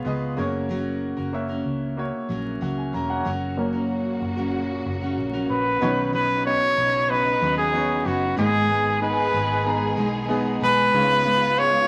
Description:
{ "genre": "piano-driven pop", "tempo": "94 BPM", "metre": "4/4", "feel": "straight", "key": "B major", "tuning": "A4 = 441 Hz", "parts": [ { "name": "clear concert grand piano", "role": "accompaniment", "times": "0.0-11.9 s", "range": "G#2 to A#5", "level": "-31 LUFS", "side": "equal", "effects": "none" }, { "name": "picked steel-string acoustic guitar", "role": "riff", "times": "0.0-11.9 s", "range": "G#2 to B4", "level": "-31 LUFS", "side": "equal", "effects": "none" }, { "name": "vintage muted fingered electric bass", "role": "bass", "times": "0.0-11.9 s", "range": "E1 to D#2", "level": "-34 LUFS", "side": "equal", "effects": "none" }, { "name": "warm studio string section", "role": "sustained chords", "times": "3.3-11.9 s", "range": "A#2 to G#4", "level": "-32 LUFS", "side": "equal", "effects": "none" }, { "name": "clear trumpet", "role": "melody", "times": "5.5-11.9 s", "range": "F#4 to C#5", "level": "-22 LUFS", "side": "equal", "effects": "none" } ], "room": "wet studio reverb, RT60 0.7 s", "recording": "vinyl crackle", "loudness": "-23 LUFS", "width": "mono", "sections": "0.0-3.3 A section; 3.3-5.8 B section; 5.8-11.9 C section", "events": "grand piano solo 3.3-5.8", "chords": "0.4 F#; 5.8 Badd9; 8.4 G#m; 10.9 C#7", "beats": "0.06 | 0.69 1.33 1.98 2.62 | 3.26 3.90 4.54 5.18 | 5.82 6.46 7.10 7.74 | 8.38 9.02 9.66 10.30 | 10.94 11.58" }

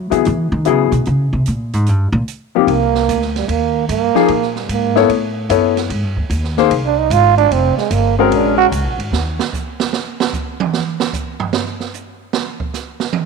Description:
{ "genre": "jazz, small-group swing and bop", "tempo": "149 BPM", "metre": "4/4", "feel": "swing 67% on 8ths", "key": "C minor", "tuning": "A4 = 440 Hz", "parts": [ { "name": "upright bass", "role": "bass", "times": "0.0-9.4 s", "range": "F1 to F#3", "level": "-18 LUFS", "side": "equal", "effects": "none" }, { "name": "warm grand piano", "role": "accompaniment", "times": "0.1-8.7 s", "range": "B#2 to Db5", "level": "-16 LUFS", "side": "left 13 dB", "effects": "none" }, { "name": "open jazz drum kit", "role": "drums", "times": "0.1-13.3 s", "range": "hi-hat, kick drum, ride cymbal, snare drum, toms", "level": "-22 LUFS", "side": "right 8 dB", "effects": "none" }, { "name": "growling trombone", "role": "second line", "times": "2.7-8.7 s", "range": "G3 to F#4", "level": "-16 LUFS", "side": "right 13 dB", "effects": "none" } ], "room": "light reverb, small room ambience", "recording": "1960s-style stereo with parts hard left and right", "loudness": "-14 LUFS", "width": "side -4 dB against mid", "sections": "0.0-2.7 A section; 2.7-13.3 A section", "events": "upright bass solo 0.0-2.7; trombone solo 2.7-13.3; drum solo 9.1-13.3", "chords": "0.0 Badd11; 1.1 A#m7; 1.9 D#; 2.7 Cm7; 4.3 Bbm7; 5.1 Aadd9; 5.9 Ab; 7.5 Fmadd9; 8.3 Bb7alt; 9.1 N.C.", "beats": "0.25 0.66 | 1.06 1.46 1.87 2.27 | 2.67 3.08 3.48 3.88 | 4.29 4.69 5.09 5.49 | 5.90 6.30 6.70 7.11 | 7.51 7.91 8.31 8.71 | 9.12 9.52 9.92 10.32 | 10.73 11.13 11.53 11.93 | 12.33 12.74 13.14" }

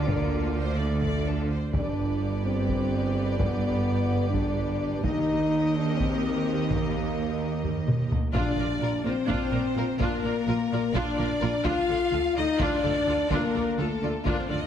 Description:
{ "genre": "cinematic, epic orchestral film score", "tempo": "254 BPM (eighths)", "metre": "7/8", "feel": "straight", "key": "Bb major", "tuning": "A4 = 440 Hz", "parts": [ { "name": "warm symphonic violin section", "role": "melody", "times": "0.0-14.6 s", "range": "F4 to Eb5", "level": "-36 LUFS", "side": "left 3 dB", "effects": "none" }, { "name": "rich symphonic violin section", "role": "second line", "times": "0.0-14.7 s", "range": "A4 to F5", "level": "-37 LUFS", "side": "left 2 dB", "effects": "none" }, { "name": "clear symphonic viola section", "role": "accompaniment", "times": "0.0-14.6 s", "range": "D4 to Bb4", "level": "-36 LUFS", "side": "right 2 dB", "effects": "none" }, { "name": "dark French horn section", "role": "sustained chords", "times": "0.0-14.7 s", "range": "A3 to F4", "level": "-28 LUFS", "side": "left 3 dB", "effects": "none" }, { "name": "clear symphonic double bass section", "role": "bass", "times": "0.0-14.6 s", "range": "G1 to Eb2", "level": "-32 LUFS", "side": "right 4 dB", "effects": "none" }, { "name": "rich symphonic cello section", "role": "bass", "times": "0.0-14.6 s", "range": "Eb2 to D3", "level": "-31 LUFS", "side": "right 3 dB", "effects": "none" }, { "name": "taiko ensemble", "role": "drums", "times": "0.1-14.7 s", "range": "none", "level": "-31 LUFS", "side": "equal", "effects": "none" }, { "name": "timpani", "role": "percussion", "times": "8.3-9.0 s", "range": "Bb2", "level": "-36 LUFS", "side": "equal", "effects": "none" } ], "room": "moderate scoring stage reverb, RT60 2.1 s", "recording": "heavily compressed radio sound", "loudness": "-24 LUFS", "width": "side -9 dB against mid", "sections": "0.0-8.3 A section; 8.3-14.7 A section", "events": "drum fill 7.6-8.3", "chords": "0.0 Dm; 1.7 G; 5.0 Eb; 8.3 Bb; 11.7 Dm", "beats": "| 0.08 0.32 0.55 0.79 1.02 1.26 1.50 | 1.73 1.97 2.21 2.44 2.68 2.92 3.15 | 3.39 3.62 3.86 4.10 4.33 4.57 4.80 | 5.04 5.28 5.51 5.75 5.99 6.22 6.46 | 6.69 6.93 7.17 7.40 7.64 7.88 8.11 | 8.35 8.58 8.82 9.06 9.29 9.53 9.77 | 10.00 10.24 10.47 10.71 10.95 11.18 11.42 | 11.65 11.89 12.13 12.36 12.60 12.84 13.07 | 13.31 13.54 13.78 14.02 14.25 14.49" }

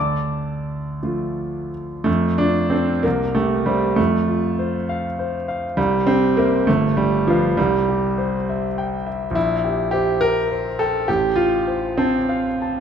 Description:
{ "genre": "classical, romantic character piece for solo piano", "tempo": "53-71 BPM (dotted quarters)", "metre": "6/8", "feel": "rubato", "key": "F major", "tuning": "A4 = 439 Hz", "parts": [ { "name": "clear grand piano", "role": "solo", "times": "0.0-12.8 s", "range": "G1 to D6", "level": "-18 LUFS", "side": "right 1 dB", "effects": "none" } ], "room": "wet recital hall reverb, RT60 1.6 s", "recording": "none", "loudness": "-18 LUFS", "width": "side -8 dB against mid", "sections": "0.0-2.1 A section; 2.1-12.8 B section", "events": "none", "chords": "0.0 Dm; 2.1 F; 3.0 C; 4.0 F; 5.8 C; 6.7 G7; 7.6 C; 9.4 C7/Bb; 11.1 F/A", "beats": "1.03 | 2.07 3.05 | 3.98 4.88 | 5.77 6.68 | 7.58 8.47 | 9.36 10.21 | 11.07 11.97" }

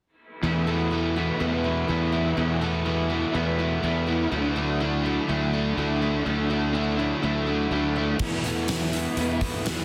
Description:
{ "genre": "rock, shoegaze and dream pop", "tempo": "124 BPM", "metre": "4/4", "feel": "straight", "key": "unclear", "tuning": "A4 = 439 Hz", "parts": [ { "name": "fingerpicked twelve-string acoustic guitar", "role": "arpeggios", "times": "0.4-9.8 s", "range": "E3 to A4", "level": "-36 LUFS", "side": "equal", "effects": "subtle chorus, analog delay" }, { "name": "crunchy overdriven guitar", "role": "riff", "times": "0.4-9.8 s", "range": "E2 to D4", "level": "-31 LUFS", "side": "equal", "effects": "none" }, { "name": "electric guitar through a small old amp", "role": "riff", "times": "0.4-9.8 s", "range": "D3 to E4", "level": "-33 LUFS", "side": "equal", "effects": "reverse reverb" }, { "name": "overdriven semi-hollow guitar", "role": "riff", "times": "0.4-9.8 s", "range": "E2 to F#4", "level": "-35 LUFS", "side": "equal", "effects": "subtle chorus" }, { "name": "fuzz fingered electric bass", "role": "bass", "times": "0.4-9.8 s", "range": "D2 to E2", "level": "-30 LUFS", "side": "equal", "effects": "overdrive" }, { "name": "gated 80s drum kit", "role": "drums", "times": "8.2-9.8 s", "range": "crash cymbal, hi-hat, kick drum, snare drum", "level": "-31 LUFS", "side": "equal", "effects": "none" }, { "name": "tambourine", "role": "percussion", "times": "8.2-9.8 s", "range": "none", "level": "barely audible", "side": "none", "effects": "none" } ], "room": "small room ambience", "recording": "dense, heavily limited modern master", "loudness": "-25 LUFS", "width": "mono", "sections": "0.4-9.8 A section", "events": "none", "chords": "0.4 Esus4; 4.3 Dadd9; 8.2 Esus4", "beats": "| 0.44 0.92 1.41 1.89 | 2.38 2.86 3.35 3.83 | 4.32 4.80 5.29 5.77 | 6.26 6.74 7.23 7.71 | 8.20 8.69 9.17 9.66" }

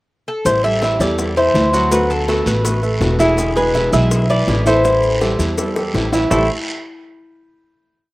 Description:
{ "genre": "latin, Cuban son and guajira", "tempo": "164 BPM", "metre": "4/4", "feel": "straight", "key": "A dorian", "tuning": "A4 = 437 Hz", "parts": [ { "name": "Cuban tres", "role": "melody", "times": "0.3-6.5 s", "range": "G#4 to E5", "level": "-18 LUFS", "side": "left 1 dB", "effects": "none" }, { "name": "nylon-string guitar", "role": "accompaniment", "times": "0.5-6.5 s", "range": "A2 to F#4", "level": "-23 LUFS", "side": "left 1 dB", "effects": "none" }, { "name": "upright bass", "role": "bass", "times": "0.5-6.5 s", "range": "E1 to E2", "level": "-19 LUFS", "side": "equal", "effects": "none" }, { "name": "bongos", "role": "percussion", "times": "0.5-6.4 s", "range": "none", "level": "-27 LUFS", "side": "left 3 dB", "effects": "none" }, { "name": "guiro", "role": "percussion", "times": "0.5-6.4 s", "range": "none", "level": "-29 LUFS", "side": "right 1 dB", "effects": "none" }, { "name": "maracas", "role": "percussion", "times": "0.5-6.4 s", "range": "none", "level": "-30 LUFS", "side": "left 3 dB", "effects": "none" }, { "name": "warm grand piano", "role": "arpeggios", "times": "0.6-6.5 s", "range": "E3 to F#5", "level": "-20 LUFS", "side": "right 2 dB", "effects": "none" }, { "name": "nylon-string guitar", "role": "second line", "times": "3.2-6.5 s", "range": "E4 to B4", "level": "-24 LUFS", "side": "left 1 dB", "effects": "none" } ], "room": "little or no reverb", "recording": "recorded outdoors, with no room sound", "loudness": "-13 LUFS", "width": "side -19 dB against mid", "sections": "0.0-0.5 pickup bar; 0.5-6.3 A section; 6.3-7.8 final chord", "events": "drum fill 5.6-6.3", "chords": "0.5 Am7; 1.9 D6; 3.4 E7; 4.8 Am7", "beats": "0.09 | 0.46 0.82 1.18 1.55 | 1.91 2.28 2.64 3.01 | 3.38 3.74 4.11 4.48 | 4.84 5.21 5.58 5.94 | 6.31" }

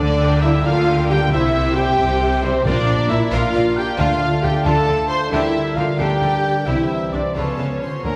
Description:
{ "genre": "cinematic, heroic adventure film score", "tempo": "90 BPM (dotted quarters)", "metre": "6/8", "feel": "straight", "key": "unclear", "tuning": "A4 = 440 Hz", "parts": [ { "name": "warm symphonic violin section", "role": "melody", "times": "0.0-8.2 s", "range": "C5 to C6", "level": "-32 LUFS", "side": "equal", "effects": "none" }, { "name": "mellow large flute ensemble", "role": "second line", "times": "0.0-8.0 s", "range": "C5 to C6", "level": "-30 LUFS", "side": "equal", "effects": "none" }, { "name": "rich studio viola section", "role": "accompaniment", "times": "0.0-8.2 s", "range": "A#3 to C5", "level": "-25 LUFS", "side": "equal", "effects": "none" }, { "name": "concert harp", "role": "arpeggios", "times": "0.0-8.2 s", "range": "Bb2 to E5", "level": "-28 LUFS", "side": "equal", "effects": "none" }, { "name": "bright trumpet section", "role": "stabs", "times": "0.0-8.2 s", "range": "A4 to C6", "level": "-26 LUFS", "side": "equal", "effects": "none" }, { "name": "rich symphonic cello section", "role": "bass", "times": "0.0-8.1 s", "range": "Bb2 to D3", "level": "-28 LUFS", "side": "equal", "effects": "none" }, { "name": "rich symphonic double bass section", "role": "bass", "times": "0.0-8.1 s", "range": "Bb1 to D2", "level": "-26 LUFS", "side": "equal", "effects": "none" }, { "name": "clear symphonic violin section", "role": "second line", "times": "0.2-8.2 s", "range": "D4 to C6", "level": "-31 LUFS", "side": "equal", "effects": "none" }, { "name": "dark trombone section", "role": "sustained chords", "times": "0.4-7.8 s", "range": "Bb2 to Cb4", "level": "-29 LUFS", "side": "equal", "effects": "none" }, { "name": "warm French horn section", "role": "sustained chords", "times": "0.4-7.8 s", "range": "Bb3 to C5", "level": "-32 LUFS", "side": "equal", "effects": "none" }, { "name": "timpani", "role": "percussion", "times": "2.7-3.3 s", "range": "Bb2", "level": "-25 LUFS", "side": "equal", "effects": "none" } ], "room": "wet scoring stage reverb, RT60 1.7 s", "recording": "heard from further back in the room", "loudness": "-18 LUFS", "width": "mono", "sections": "0.0-8.0 A section", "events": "none", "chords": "0.0 Gm/D; 1.3 C; 2.6 Bb; 4.0 Dm; 5.3 Gm/D; 6.7 C; 7.4 Db7", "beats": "0.65 | 1.31 1.98 | 2.65 3.32 | 3.99 4.65 | 5.32 5.99 | 6.67 7.35 | 8.04" }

